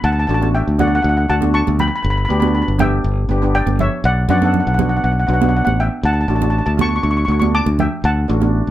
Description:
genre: calypso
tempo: 120 BPM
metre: 4/4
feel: straight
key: D major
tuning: A4 = 440 Hz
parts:
  - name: steel pan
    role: melody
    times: 0.0-8.7 s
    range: C#5 to D6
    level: -20 LUFS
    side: left 1 dB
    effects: none
  - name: modern bright fingered electric bass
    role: bass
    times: 0.0-8.7 s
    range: G1 to F#2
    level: -16 LUFS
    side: equal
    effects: none
  - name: steel pan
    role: accompaniment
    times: 0.3-8.6 s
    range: A3 to A4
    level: -22 LUFS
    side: equal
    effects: none
  - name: congas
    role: percussion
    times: 0.4-8.5 s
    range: none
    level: -22 LUFS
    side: right 6 dB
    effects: none
room: light reverb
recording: none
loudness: -14 LUFS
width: side -13 dB against mid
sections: 0.0-8.7 A section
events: none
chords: 0.0 D; 2.0 G; 4.0 Bm7; 6.0 D

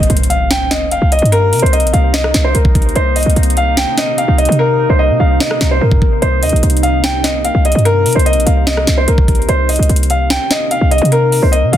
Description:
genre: hip hop, trap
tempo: 147 BPM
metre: 4/4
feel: half-time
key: C minor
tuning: A4 = 438 Hz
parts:
  - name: dark concert grand piano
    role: melody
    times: 0.0-11.8 s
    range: Bb4 to G5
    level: -15 LUFS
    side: left 1 dB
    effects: ping-pong delay
  - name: deep dark ambient pad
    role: sustained chords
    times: 0.3-11.8 s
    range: C3 to Eb4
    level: -21 LUFS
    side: right 1 dB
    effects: chorus, built-in reverb
  - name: short 808-style bass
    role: bass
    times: 0.0-11.8 s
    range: Bb1 to C3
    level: -13 LUFS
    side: equal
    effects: none
  - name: trap drum kit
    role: drums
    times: 0.0-11.8 s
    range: hi-hat, kick drum, rim click, snare drum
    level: -16 LUFS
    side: equal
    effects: overdrive
  - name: impact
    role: sound effects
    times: 0.0-1.3 s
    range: none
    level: -23 LUFS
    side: equal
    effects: none
room: little or no reverb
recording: dense, heavily limited modern master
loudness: -10 LUFS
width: side -11 dB against mid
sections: 0.0-11.8 A section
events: impact 0.0-1.3; hi-hats muted 4.6-6.2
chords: 0.0 Cm7

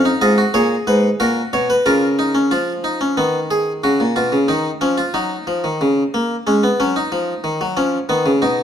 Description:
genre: classical, baroque-style 3-part fugue for harpsichord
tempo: 91 BPM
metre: 4/4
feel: straight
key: unclear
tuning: A4 = 440 Hz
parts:
  - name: harpsichord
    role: solo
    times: 0.0-8.6 s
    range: G#2 to D#5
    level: -15 LUFS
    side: equal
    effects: none
room: moderate recital hall reverb, RT60 1.4 s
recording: close, detailed microphones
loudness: -15 LUFS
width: side -9 dB against mid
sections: 0.0-2.5 A section; 2.5-8.6 B section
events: none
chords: 0.0 C#7/E#; 1.2 F#/A#; 2.5 Fdim; 3.8 A#m (rootless); 5.2 D#m; 6.5 G#m; 7.8 Badd9

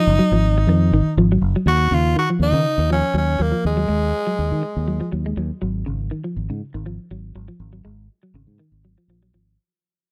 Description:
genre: afrobeat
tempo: 121 BPM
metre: 4/4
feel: swing 54% on 16ths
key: unclear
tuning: A4 = 440 Hz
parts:
  - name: raspy tenor saxophone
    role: melody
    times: 0.0-5.1 s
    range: Ab3 to Gb4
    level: -24 LUFS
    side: equal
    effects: none
  - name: clean electric guitar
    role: arpeggios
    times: 0.0-9.6 s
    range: Db3 to Ab3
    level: -25 LUFS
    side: equal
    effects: none
  - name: fingered electric bass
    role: bass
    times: 0.1-9.6 s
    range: Gb1 to Eb3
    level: -22 LUFS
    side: equal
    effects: none
room: studio reverb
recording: dry, close 1970s-style studio recording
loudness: -20 LUFS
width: mono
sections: 0.0-1.7 A section; 1.7-9.6 B section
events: fade-out 1.7-9.6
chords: 0.0 Ab5; 1.7 Ebmadd9; 5.6 Ab5

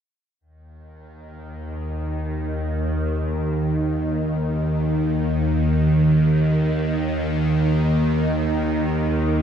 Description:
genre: dark ambient drone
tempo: free time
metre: none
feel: none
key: unclear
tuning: A4 = 439 Hz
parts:
  - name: bowed-like drone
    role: solo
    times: 1.6-9.4 s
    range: Eb2 to Eb3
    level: -19 LUFS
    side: equal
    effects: built-in reverb, phaser
room: wet cathedral reverb, RT60 5.3 s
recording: in a vast, echoing space, cassette tape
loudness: -19 LUFS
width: side -8 dB against mid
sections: 0.4-9.4 A section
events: none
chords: none

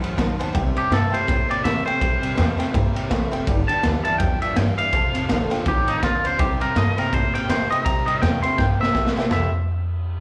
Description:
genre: rockabilly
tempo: 164 BPM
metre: 4/4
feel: swing 59% on 8ths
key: C mixolydian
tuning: A4 = 440 Hz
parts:
  - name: picked steel-string acoustic guitar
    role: accompaniment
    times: 0.0-9.5 s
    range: F2 to F4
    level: -34 LUFS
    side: equal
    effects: none
  - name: tack piano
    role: accompaniment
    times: 0.0-9.5 s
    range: B4 to C6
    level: -35 LUFS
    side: equal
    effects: slapback echo
  - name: clean electric guitar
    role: riff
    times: 0.0-9.5 s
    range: F2 to G4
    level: -32 LUFS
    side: equal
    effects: slapback echo
  - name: upright bass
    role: bass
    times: 0.0-9.5 s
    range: F1 to C3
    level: -28 LUFS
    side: equal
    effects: none
  - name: raw garage drum kit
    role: drums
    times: 0.0-9.4 s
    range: kick drum, ride cymbal, snare drum, toms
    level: -26 LUFS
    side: equal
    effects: none
  - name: twangy electric guitar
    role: melody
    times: 0.8-9.5 s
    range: Eb4 to C6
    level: -25 LUFS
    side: equal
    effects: slapback echo, tape echo
room: small room reverb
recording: live gig heard through the venue's PA, club reverb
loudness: -21 LUFS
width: mono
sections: 0.0-9.3 A section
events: drum fill 8.6-9.3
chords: 0.0 F#dim7; 0.5 C6; 3.5 G6; 4.9 F6; 6.4 C6

